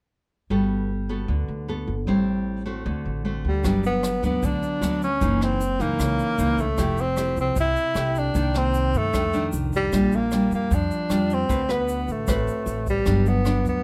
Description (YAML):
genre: bossa nova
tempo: 153 BPM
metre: 4/4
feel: straight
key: G major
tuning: A4 = 438 Hz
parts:
  - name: nylon-string guitar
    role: accompaniment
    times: 0.5-13.8 s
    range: F2 to B4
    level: -28 LUFS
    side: equal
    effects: none
  - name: upright bass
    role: bass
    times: 0.5-13.8 s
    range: F1 to G2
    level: -29 LUFS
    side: equal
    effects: none
  - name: breathy tenor saxophone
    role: melody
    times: 3.5-13.8 s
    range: G3 to E4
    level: -27 LUFS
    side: equal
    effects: none
  - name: jazz brush drum kit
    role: drums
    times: 3.6-13.7 s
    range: hi-hat, kick drum, rim click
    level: -33 LUFS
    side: equal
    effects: none
  - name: tube shaker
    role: percussion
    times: 3.6-13.8 s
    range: none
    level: -46 LUFS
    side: equal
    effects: none
room: light reverb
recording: none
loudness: -23 LUFS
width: mono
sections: 0.5-3.6 A section; 3.6-13.8 B section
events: none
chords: 0.5 Gmaj9; 2.1 Am7; 2.9 D7; 3.6 Gmaj7; 5.2 F#6; 6.8 Fmaj9; 8.4 Cm9; 9.1 F6; 9.9 Bb6; 11.5 D6; 13.1 Gmaj7